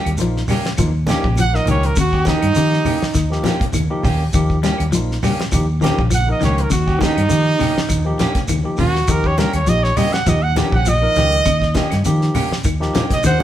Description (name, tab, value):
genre	afrobeat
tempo	101 BPM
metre	4/4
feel	swing 53% on 16ths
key	Eb mixolydian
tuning	A4 = 440 Hz
part	clean electric guitar	arpeggios	0.0-13.4 s	Db3 to G3	-24 LUFS	left 5 dB	tremolo
part	clean electric guitar	stabs	0.0-13.1 s	Bb3 to G4	-26 LUFS	right 2 dB	none
part	fingered electric bass	bass	0.1-13.4 s	Bb1 to Eb3	-19 LUFS	equal	none
part	damped 70s drum kit	drums	0.1-13.4 s	hi-hat, kick drum, snare drum	-23 LUFS	equal	none
part	claves	percussion	0.1-13.4 s	none	-36 LUFS	equal	none
part	barky tine electric piano	accompaniment	0.2-13.4 s	F3 to Bb4	-26 LUFS	left 2 dB	none
part	congas	percussion	0.2-13.4 s	none	-25 LUFS	right 1 dB	none
part	shekere	percussion	0.2-13.4 s	none	-27 LUFS	right 2 dB	none
part	warm trumpet	melody	1.4-13.4 s	Eb4 to Gb5	-19 LUFS	right 3 dB	none
part	bright alto saxophone	melody	13.3-13.4 s	C5	-18 LUFS	left 2 dB	none
room	moderate stone room reverb, RT60 1.0 s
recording	band playing live in one room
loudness	-14 LUFS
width	side -11 dB against mid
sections	0.0-13.4 A section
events	trumpet solo 0.0-13.4; drum fill 13.1-13.4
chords	0.0 Eb7